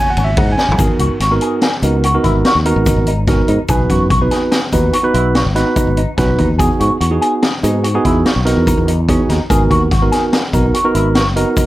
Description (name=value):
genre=progressive instrumental, band music in an uneven meter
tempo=145 BPM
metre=7/4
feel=straight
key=G# minor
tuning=A4 = 440 Hz
part: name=mellow tine electric piano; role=accompaniment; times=0.0-11.7 s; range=A#3 to G#5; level=-16 LUFS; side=right 2 dB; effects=plate reverb
part: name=electric guitar with an envelope filter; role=arpeggios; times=0.0-11.7 s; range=C#4 to G#4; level=-20 LUFS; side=left 1 dB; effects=analog chorus, plate reverb
part: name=fretless electric bass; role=bass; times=0.2-11.4 s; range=F#1 to G#2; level=-16 LUFS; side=equal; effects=none
part: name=street-band drum kit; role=drums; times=0.2-11.7 s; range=hi-hat, kick drum, ride cymbal, snare drum, toms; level=-17 LUFS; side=equal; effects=none
part: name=tube shaker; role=percussion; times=0.2-11.7 s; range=none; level=-32 LUFS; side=left 7 dB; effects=none
room=moderate studio reverb, RT60 0.5 s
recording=none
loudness=-11 LUFS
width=side -16 dB against mid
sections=0.8-11.7 A section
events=drum fill 0.6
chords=0.0 G#m7; 3.7 B; 6.6 Emaj7; 9.5 G#m7